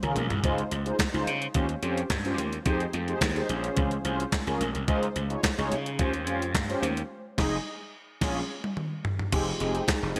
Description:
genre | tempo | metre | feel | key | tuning
early-eighties boogie funk | 108 BPM | 4/4 | straight | F minor | A4 = 440 Hz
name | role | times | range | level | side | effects
mellow synth brass | accompaniment | 0.0-10.2 s | C4 to Eb5 | -33 LUFS | equal | chorus, phaser
gritty slap bass | bass | 0.0-10.2 s | F1 to Db3 | -33 LUFS | equal | overdrive
crisp 8-bit digital drum machine | drums | 0.0-10.2 s | crash cymbal, handclaps, hi-hat, kick drum, snare drum, toms | -32 LUFS | equal | gated reverb
congas | percussion | 0.2-10.0 s | none | -43 LUFS | equal | none
chorused pulse-width pad | sustained chords | 9.3-10.2 s | F3 to Ab4 | -38 LUFS | equal | none
room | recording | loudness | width
moderate lush hall reverb, RT60 1.6 s | bright 1980s-style digital production | -28 LUFS | mono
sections
0.0-9.3 A section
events
drum fill 0.0-0.4, 8.2-9.3; band accent 7.1-9.3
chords
0.4 Dbmaj7; 1.5 Eb13; 2.7 Fm7; 3.5 Bbm7; 4.9 Dbmaj7; 6.0 Eb13; 7.1 Fm7; 7.9 Bbm7; 8.8 N.C.; 9.3 Fm9

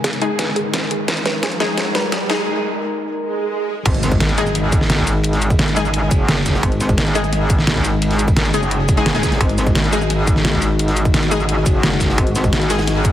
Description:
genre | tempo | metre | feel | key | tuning
dark technical drum and bass | 173 BPM | 4/4 | straight | unclear | A4 = 440 Hz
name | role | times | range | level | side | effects
dark analog pad | sustained chords | 0.0-13.1 s | G#3 to A#5 | -24 LUFS | left 3 dB | chorus, sidechain pumping
wide unison pluck | arpeggios | 0.0-2.2 s | G#4 to B4 | -27 LUFS | right 2 dB | sidechain pumping, digital delay
dubstep drum kit | drums | 0.0-13.1 s | crash cymbal, hi-hat, shaker, snare drum | -20 LUFS | equal | high-pass filter on hats, high-pass filter on snare, high-pass filter on cymbals, high-pass filter on perc, high-pass filter on room
electronic kick drum | drums | 0.0-13.1 s | none | -19 LUFS | equal | high-pass filter on kick, high-pass filter on room
riser, swell and impact | sound effects | 0.0-5.2 s | none | -25 LUFS | right 2 dB | none
orchestra-hit-like synth stab | stabs | 0.2-12.8 s | G#3 to G#4 | -23 LUFS | left 2 dB | built-in reverb, digital delay
metallic wobble bass | bass | 3.9-4.2, 6.6-7.0, 9.4-9.7, 12.2-12.5 s | G#1 | -18 LUFS | equal | chorus, tube saturation
crunchy breakbeat drum kit | drums | 3.9-13.1 s | ride cymbal, snare drum | -30 LUFS | equal | none
metallic wobble bass | bass | 4.2-13.1 s | F#1 to G#1 | -19 LUFS | equal | chorus
room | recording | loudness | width
light reverb | heavily compressed radio sound, multiband compression, high-pass filter | -15 LUFS | side -12 dB against mid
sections
0.0-3.9 A section; 3.9-13.1 B section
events
build-up 0.0-3.9; drum fill 0.0-2.5; riser 0.0-2.5; break 2.5-3.9; swell 3.2-3.9; drop 3.9-13.1; impact 3.9-5.2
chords
0.0 G#5

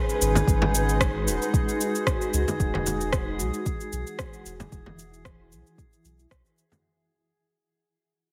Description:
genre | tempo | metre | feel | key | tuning
organic downtempo | 113 BPM | 4/4 | swing 54% on 16ths | unclear | A4 = 440 Hz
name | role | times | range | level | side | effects
granular cloud pad | sustained chords | 0.1-6.8 s | E3 to B4 | -33 LUFS | equal | built-in reverb, sidechain pumping
drifting glass-harmonics texture | texture | 0.0-6.9 s | G#4 | -34 LUFS | equal | chorus, built-in reverb
electronic cabasa and rim click | drums | 0.1-6.8 s | none | -32 LUFS | equal | overdrive
warm sub bass | bass | 0.2-6.4 s | D#1 to C#2 | -30 LUFS | equal | none
frame drum | percussion | 0.4-6.8 s | none | -31 LUFS | equal | none
electronic kick drum | drums | 0.5-6.4 s | none | -29 LUFS | equal | none
room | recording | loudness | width
moderate lush hall reverb, RT60 1.8 s | heavily compressed radio sound | -25 LUFS | mono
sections
0.0-6.8 A section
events
fade-out 0.0-6.8; filter sweep on ambient pad 0.0-6.8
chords
0.0 G#m7; 2.6 Eadd9

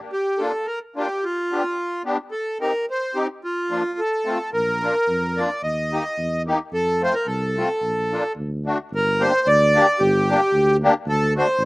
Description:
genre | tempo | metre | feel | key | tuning
alpine folk, alpine dance band | 109 BPM | 2/4 | straight | Bb major | A4 = 440 Hz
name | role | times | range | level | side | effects
accordion | melody | 0.1-11.6 s | F4 to Eb5 | -20 LUFS | equal | none
musette accordion | accompaniment | 0.4-11.5 s | F3 to G4 | -21 LUFS | left 1 dB | slapback echo
dark tuba | bass | 4.5-11.7 s | G1 to F2 | -25 LUFS | equal | none
room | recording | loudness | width
little or no reverb | recorded outdoors, with no room sound | -19 LUFS | side -24 dB against mid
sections
0.1-8.9 A section; 8.9-11.7 B section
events
none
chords
0.1 Bb; 1.2 G7; 2.3 Cm; 3.4 Bb/F; 4.0 F; 4.5 Bb; 5.6 Eb; 6.7 F; 7.8 Bb; 8.4 D; 8.9 Gm; 11.1 D

